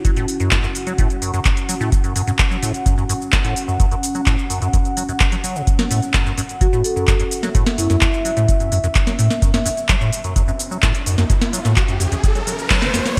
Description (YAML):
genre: acid house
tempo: 128 BPM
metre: 4/4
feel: straight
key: F# minor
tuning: A4 = 440 Hz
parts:
  - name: liquid acid bass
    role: riff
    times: 0.0-13.2 s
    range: F#2 to F#3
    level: -24 LUFS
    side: equal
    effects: phaser, tube saturation, subtle chorus, sidechain pumping
  - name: booming analog drum machine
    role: drums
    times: 0.0-13.2 s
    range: crash cymbal, handclaps, hi-hat, shaker, snare drum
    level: -24 LUFS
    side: equal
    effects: gated reverb
  - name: electronic kick drum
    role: drums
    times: 0.0-13.2 s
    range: none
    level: -20 LUFS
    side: equal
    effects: none
  - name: deep dark ambient pad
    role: texture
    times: 0.0-13.2 s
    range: C#4 to F#5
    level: -29 LUFS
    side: equal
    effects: chorus, built-in reverb, sidechain pumping
  - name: marimba with soft mallets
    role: melody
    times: 6.6-8.1 s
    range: E4 to A4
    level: -27 LUFS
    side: equal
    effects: digital delay
  - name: riser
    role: sound effects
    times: 10.5-13.2 s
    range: none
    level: -29 LUFS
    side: equal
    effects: none
room: moderate lush hall reverb, RT60 2.2 s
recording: bright 1980s-style digital production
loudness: -18 LUFS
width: mono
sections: 0.0-13.2 A section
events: filter sweep on acid bass 0.0-13.2; riser 10.5-13.2; band accent 12.7; drum fill 12.9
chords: 0.0 F#5